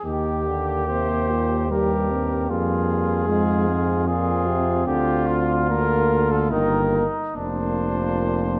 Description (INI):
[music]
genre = classical, brass quintet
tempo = 74 BPM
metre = 3/4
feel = uneven beats, rubato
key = Bb major from 4.9 s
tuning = A4 = 441 Hz
[part]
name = mellow cornet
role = melody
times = 0.0-8.6 s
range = F4 to C5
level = -28 LUFS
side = equal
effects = none
[part]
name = clear flugelhorn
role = second line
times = 0.0-8.6 s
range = D4 to Ab4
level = -30 LUFS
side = equal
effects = none
[part]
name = brilliant trombone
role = accompaniment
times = 0.0-8.6 s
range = G2 to Eb3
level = -32 LUFS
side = equal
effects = none
[part]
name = dark French horn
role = accompaniment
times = 0.0-8.6 s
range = G3 to C4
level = -29 LUFS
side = equal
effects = none
[part]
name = clear bass trombone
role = bass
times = 0.1-8.6 s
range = F1 to F2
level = -27 LUFS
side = equal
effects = none
[sound]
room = moderate recital hall reverb, RT60 1.4 s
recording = none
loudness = -22 LUFS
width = mono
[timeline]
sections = 0.0-8.6 A section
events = none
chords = 0.0 Eb; 2.5 Bb5/F; 4.9 Bb/D; 6.5 Eb/G; 7.4 Fsus4